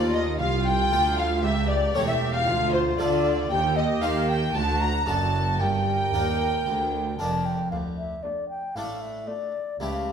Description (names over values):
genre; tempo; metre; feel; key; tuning
classical, baroque-style concerto movement with solo episodes; 116 BPM; 4/4; straight; G minor; A4 = 440 Hz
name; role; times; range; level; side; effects
baroque flute; melody; 0.0-10.1 s; C5 to Bb5; -28 LUFS; left 2 dB; none
dark studio violin section; melody; 0.0-9.7 s; F4 to Bb5; -31 LUFS; left 2 dB; none
rich chamber violin section; second line; 0.0-9.7 s; D4 to Bb5; -32 LUFS; left 1 dB; none
dark chamber viola section; accompaniment; 0.0-9.7 s; A3 to Bb4; -30 LUFS; right 2 dB; none
harpsichord; accompaniment; 0.0-10.1 s; C2 to C5; -32 LUFS; equal; none
rich chamber double bass section; bass; 0.0-10.1 s; E1 to Eb2; -29 LUFS; right 2 dB; none
warm chamber cello section; bass; 0.0-10.1 s; C2 to Eb3; -30 LUFS; right 3 dB; none
room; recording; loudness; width
wet recital hall reverb, RT60 1.5 s; minimal, uncompressed stereo recording; -22 LUFS; side -7 dB against mid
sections
0.0-7.7 A section; 7.7-10.1 B section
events
none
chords
0.0 Dm; 1.4 A7/C#; 2.5 Dm; 3.5 Cm/Eb; 4.5 D; 5.6 Gm; 7.7 Dm